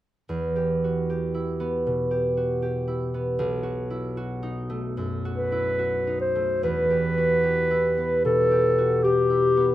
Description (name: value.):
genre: classical, romantic duo for clarinet and harp.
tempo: 68-79 BPM.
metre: 4/4.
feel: rubato.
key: E minor.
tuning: A4 = 440 Hz.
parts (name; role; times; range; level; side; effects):
concert harp; accompaniment; 0.3-9.7 s; B1 to G4; -24 LUFS; right 1 dB; none.
mellow clarinet; melody; 5.4-9.7 s; G4 to C5; -22 LUFS; left 1 dB; none.
room: little or no reverb.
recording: minimal, uncompressed stereo recording.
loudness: -22 LUFS.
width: side -14 dB against mid.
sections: 0.3-6.6 A section; 6.6-9.7 B section.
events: none.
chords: 0.3 Em; 3.4 B7; 6.6 Em.